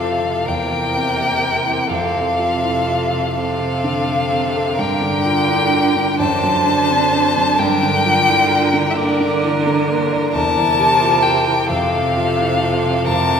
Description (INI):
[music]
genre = classical, slow romantic movement for piano quartet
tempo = 43 BPM (dotted quarters)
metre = 6/8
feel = rubato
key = F major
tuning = A4 = 440 Hz
[part]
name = rich violin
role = melody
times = 0.0-13.4 s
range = D5 to A5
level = -17 LUFS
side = left 2 dB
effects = none
[part]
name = bright violin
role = second line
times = 0.0-13.4 s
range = A4 to C5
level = -24 LUFS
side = left 1 dB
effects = none
[part]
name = clear cello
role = second line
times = 0.0-13.4 s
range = C3 to D3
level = -22 LUFS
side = right 4 dB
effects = none
[part]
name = warm concert grand piano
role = accompaniment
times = 0.0-13.4 s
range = E2 to D5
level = -21 LUFS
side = right 1 dB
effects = none
[sound]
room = wet church reverb, RT60 2.7 s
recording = none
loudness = -14 LUFS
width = side -7 dB against mid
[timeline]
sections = 0.0-13.4 A section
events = none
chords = 0.5 C7/E; 1.9 F; 4.8 Gm7; 6.2 D7/F#; 7.6 Gm7; 10.3 C7/E; 11.7 F